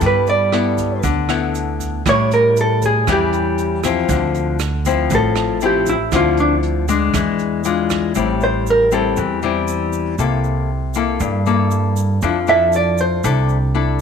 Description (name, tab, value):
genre	bossa nova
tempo	118 BPM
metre	4/4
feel	straight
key	unclear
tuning	A4 = 440 Hz
part	hollow-body jazz guitar	melody	0.0-9.2, 12.5-13.2 s	D4 to E5	-16 LUFS	right 2 dB	none
part	nylon-string guitar	accompaniment	0.0-14.0 s	G2 to A4	-19 LUFS	left 8 dB	none
part	upright bass	bass	0.0-14.0 s	A1 to A2	-21 LUFS	right 2 dB	none
part	jazz brush drum kit	drums	0.0-8.0 s	hi-hat, kick drum, rim click	-26 LUFS	right 9 dB	none
part	egg shaker	percussion	0.0-13.7 s	none	-35 LUFS	right 17 dB	none
room	moderate plate reverb, RT60 1.3 s, small room ambience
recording	1960s-style stereo with parts hard left and right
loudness	-15 LUFS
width	side -6 dB against mid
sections	0.0-8.2 A section; 8.2-14.0 A section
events	hollow-body jazz guitar solo 0.0-14.0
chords	0.0 G69; 2.1 A7; 4.1 Dm9; 7.1 E7b9; 8.2 Am7; 10.2 C6; 12.2 F6